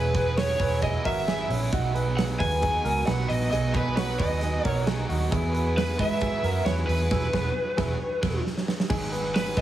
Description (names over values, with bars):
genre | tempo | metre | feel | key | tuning
jangly indie pop | 134 BPM | 4/4 | straight | unclear | A4 = 440 Hz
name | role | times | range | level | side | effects
lead guitar through a small cranked amp | melody | 0.0-9.6 s | B4 to G#5 | -29 LUFS | equal | overdrive, digital delay
overdriven electric guitar | accompaniment | 0.0-9.6 s | G#2 to G#4 | -35 LUFS | right 4 dB | none
direct-recorded clean electric guitar | arpeggios | 0.0-9.6 s | C#4 to C#5 | -31 LUFS | equal | lush chorus, digital delay
vintage muted fingered electric bass | bass | 0.0-9.6 s | E1 to G#2 | -28 LUFS | right 2 dB | none
big rock drum kit | drums | 0.1-9.6 s | crash cymbal, hi-hat, kick drum, snare drum | -29 LUFS | right 1 dB | none
rich studio string section | sustained chords | 1.7-8.9 s | E3 to C#5 | -37 LUFS | equal | none
room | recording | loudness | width
light reverb | heavily compressed radio sound, small room ambience | -23 LUFS | side -12 dB against mid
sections
0.0-8.9 A section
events
band accent 7.1-8.9; drum fill 8.5-8.9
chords
0.0 Eadd9; 1.7 B; 5.3 Eadd9; 8.9 G#m7